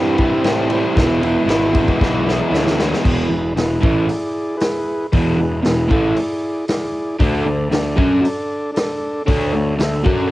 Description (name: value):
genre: garage rock duo or trio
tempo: 116 BPM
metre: 4/4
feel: straight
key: E mixolydian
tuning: A4 = 440 Hz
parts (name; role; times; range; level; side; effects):
- overdriven combo organ; sustained chords; 0.0-10.3 s; D4 to E5; -23 LUFS; equal; cassette tape
- crunchy overdriven guitar; riff; 0.0-10.3 s; E2 to F#4; -18 LUFS; equal; cassette tape
- fuzz picked electric bass; bass; 0.0-10.3 s; E1 to A2; -22 LUFS; equal; overdrive
- vintage drum kit; drums; 0.2-10.2 s; crash cymbal, hi-hat, kick drum, ride cymbal, snare drum; -20 LUFS; equal; vintage 12-bit sampler grit, cassette tape
room: light reverb, small room ambience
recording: home recording on cassette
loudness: -15 LUFS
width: side -16 dB against mid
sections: 0.0-3.0 A section; 3.0-10.3 B section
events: drum fill 2.0-3.0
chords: 0.0 C; 1.0 E; 7.2 D5